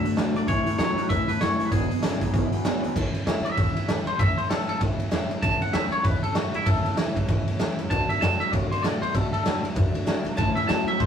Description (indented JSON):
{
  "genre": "rockabilly",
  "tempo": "194 BPM",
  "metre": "4/4",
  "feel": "swing 61% on 8ths",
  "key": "A major",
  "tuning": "A4 = 441 Hz",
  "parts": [
    { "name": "twangy electric guitar", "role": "melody", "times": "0.0-11.1 s", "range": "E4 to A5", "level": "-27 LUFS", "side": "equal", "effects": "tremolo" },
    { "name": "picked steel-string acoustic guitar", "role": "accompaniment", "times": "0.0-11.1 s", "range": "E2 to F#4", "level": "-32 LUFS", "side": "left 1 dB", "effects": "none" },
    { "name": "electric guitar through a small old amp", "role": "riff", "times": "0.0-2.9, 10.4-11.1 s", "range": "E2 to A3", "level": "-27 LUFS", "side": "left 1 dB", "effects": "none" },
    { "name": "upright bass", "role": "bass", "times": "0.0-11.1 s", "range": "E1 to D3", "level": "-30 LUFS", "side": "equal", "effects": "none" },
    { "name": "raw garage drum kit", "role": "drums", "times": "0.1-11.1 s", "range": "crash cymbal, hi-hat, kick drum, ride cymbal, snare drum", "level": "-25 LUFS", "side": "right 1 dB", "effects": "none" }
  ],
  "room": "moderate booth ambience, RT60 0.3 s",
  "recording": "rough rehearsal-room recording",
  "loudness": "-22 LUFS",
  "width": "side -8 dB against mid",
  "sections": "0.0-3.0 A section; 3.0-11.1 B section",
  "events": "clean electric guitar solo 3.0-11.1",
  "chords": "0.5 A; 1.7 E; 3.0 A; 7.9 D; 10.4 A"
}